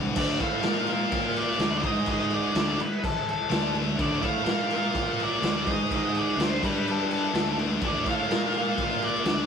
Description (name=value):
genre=quiet-loud alternative rock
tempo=126 BPM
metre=4/4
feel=straight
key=unclear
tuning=A4 = 440 Hz
part: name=scooped high-gain guitar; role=riff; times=0.0-9.5 s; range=G2 to Bb4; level=-30 LUFS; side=left 7 dB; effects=distortion
part: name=sludgy distorted guitar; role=riff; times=0.0-9.5 s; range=G2 to Bb4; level=-32 LUFS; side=right 4 dB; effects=overdrive
part: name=fuzz fingered electric bass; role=bass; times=0.0-9.5 s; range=D2 to Bb2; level=-32 LUFS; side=equal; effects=overdrive
part: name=octave-fuzz lead guitar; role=melody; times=0.2-9.5 s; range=A4 to F5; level=-30 LUFS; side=right 1 dB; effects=distortion
part: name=raw garage drum kit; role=drums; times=0.2-9.4 s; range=crash cymbal, kick drum, snare drum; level=-28 LUFS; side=equal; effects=none
room=light reverb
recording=rough rehearsal-room recording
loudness=-23 LUFS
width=side -6 dB against mid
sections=0.2-9.5 A section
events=none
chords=0.2 Dm; 0.6 Bb5; 1.6 D5; 1.8 G#5; 2.6 D5; 4.5 Bb5; 5.4 D5; 5.7 G#5; 6.4 D5; 6.6 G5; 7.3 D5; 8.3 Bb5